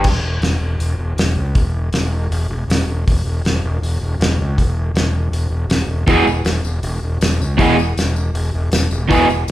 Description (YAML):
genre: garage rock duo or trio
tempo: 159 BPM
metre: 4/4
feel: straight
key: E major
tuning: A4 = 440 Hz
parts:
  - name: crunchy overdriven guitar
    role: riff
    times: 0.0, 6.1-9.3 s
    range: E2 to G#4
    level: -14 LUFS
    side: right 1 dB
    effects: none
  - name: fuzz fingered electric bass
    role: bass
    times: 0.0-9.5 s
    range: E1 to C#2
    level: -18 LUFS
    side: equal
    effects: overdrive, tube saturation
  - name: cloth-damped thuddy drum kit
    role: drums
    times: 0.0-9.5 s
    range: crash cymbal, hi-hat, kick drum, snare drum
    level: -19 LUFS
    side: equal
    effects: none
  - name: tambourine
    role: percussion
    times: 6.1-9.5 s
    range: none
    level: -32 LUFS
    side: left 6 dB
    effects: none
room: moderate large studio reverb, RT60 0.8 s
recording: band playing live in one room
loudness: -15 LUFS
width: side -14 dB against mid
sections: 0.1-9.5 A section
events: none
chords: none